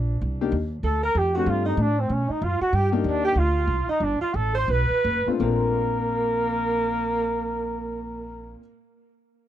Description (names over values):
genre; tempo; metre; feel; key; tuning
jazz, small-group swing and bop; 162-191 BPM; 4/4; swing 60% on 8ths; Bb major; A4 = 437 Hz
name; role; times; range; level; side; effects
upright bass; bass; 0.0-8.5 s; F#1 to B2; -26 LUFS; right 1 dB; none
clear upright piano; accompaniment; 0.4-8.6 s; Bb2 to Bb4; -28 LUFS; left 7 dB; none
dark trumpet; melody; 0.8-8.6 s; Bb3 to C5; -26 LUFS; left 1 dB; none
breathy alto saxophone; second line; 0.8-8.5 s; Bb3 to C5; -29 LUFS; right 5 dB; tape echo
room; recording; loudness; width
little or no reverb; dry, close 1970s-style studio recording; -21 LUFS; side -11 dB against mid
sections
0.2-5.4 A section; 5.4-8.4 B section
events
slowing down 2.7-5.4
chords
0.2 Cm9; 0.8 Dm7; 1.5 Gsus24; 2.1 B5; 2.7 Ebmaj7; 3.4 Dm7; 4.0 Gsus2; 4.7 B5; 5.4 Bbadd9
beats
| 0.21 0.52 0.84 1.15 | 1.47 1.78 2.10 2.41 | 2.73 3.04 3.36 3.68 | 4.01 4.34 4.69 5.04 | 5.41 5.78 6.14 6.52 | 6.89 7.26 7.63 8.00